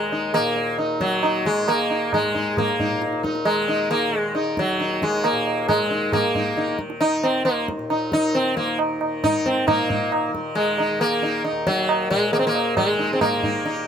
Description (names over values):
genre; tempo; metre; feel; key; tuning
indian classical, Hindustani; 135 BPM; 4/4; straight; Eb raga kafi; A4 = 440 Hz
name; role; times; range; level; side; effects
sitar; melody; 0.0-13.9 s; Gb3 to Eb4; -21 LUFS; equal; none
tanpura; drone; 0.0-13.9 s; Eb2 to Eb3; -30 LUFS; left 1 dB; none
tabla; percussion; 0.1-13.9 s; none; -25 LUFS; right 3 dB; none
room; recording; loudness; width
light reverb; close, detailed microphones; -19 LUFS; side -8 dB against mid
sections
0.0-9.7 A section; 9.7-13.9 B section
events
none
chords
none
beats
0.34 | 0.79 1.23 1.68 2.12 | 2.57 3.02 3.46 3.91 | 4.35 4.80 5.24 5.69 | 6.13 6.58 7.02 7.46 | 7.91 8.35 8.79 9.24 | 9.68 10.12 10.56 11.01 | 11.45 11.89 12.33 12.77 | 13.21 13.65